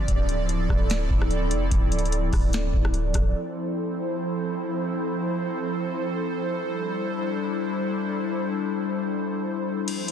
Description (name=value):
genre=hip hop, atmospheric cloud-rap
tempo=147 BPM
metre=4/4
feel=half-time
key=F major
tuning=A4 = 439 Hz
part: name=airy breathy pad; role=sustained chords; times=0.0-10.1 s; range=F3 to D5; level=-26 LUFS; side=equal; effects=chorus, sidechain pumping
part: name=soft 808-style bass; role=bass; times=0.0-3.3 s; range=D1 to F1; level=-26 LUFS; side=equal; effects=none
part: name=booming analog drum machine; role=drums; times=0.1-3.3, 9.9-10.1 s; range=crash cymbal, hi-hat, kick drum, rim click, snare drum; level=-24 LUFS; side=equal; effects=none
room=light reverb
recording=dense, heavily limited modern master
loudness=-23 LUFS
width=side -9 dB against mid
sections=0.0-3.3 A section; 3.3-9.9 B section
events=kick muted 9.9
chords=0.1 Dm9; 3.3 Fmaj7; 6.6 C69